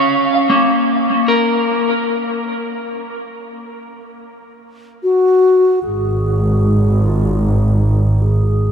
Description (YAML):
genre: ambient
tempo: 75 BPM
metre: 4/4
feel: straight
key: unclear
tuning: A4 = 440 Hz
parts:
  - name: electric guitar at the edge of break-up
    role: arpeggios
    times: 0.0-3.3 s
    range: A#3 to E#5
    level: -15 LUFS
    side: equal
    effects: vibrato effect, diffuse ambient delay
  - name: mellow hollow alto flute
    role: melody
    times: 5.0-8.7 s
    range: D#4 to G#4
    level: -16 LUFS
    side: left 2 dB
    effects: diffuse ambient delay
  - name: warm studio double bass section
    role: bass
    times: 5.8-8.7 s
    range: G#1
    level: -13 LUFS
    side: right 1 dB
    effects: none
room: moderate huge ambient reverb, RT60 8.5 s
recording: none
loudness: -12 LUFS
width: side -7 dB against mid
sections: 0.0-5.8 A section; 5.8-8.7 B section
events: fade-out on clean electric guitar 0.0-5.8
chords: 0.0 A#m; 2.6 N.C.; 5.8 G#5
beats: 0.23 1.03 1.83 | 2.63 3.43 4.23 5.03 | 5.83 6.63 7.43 8.23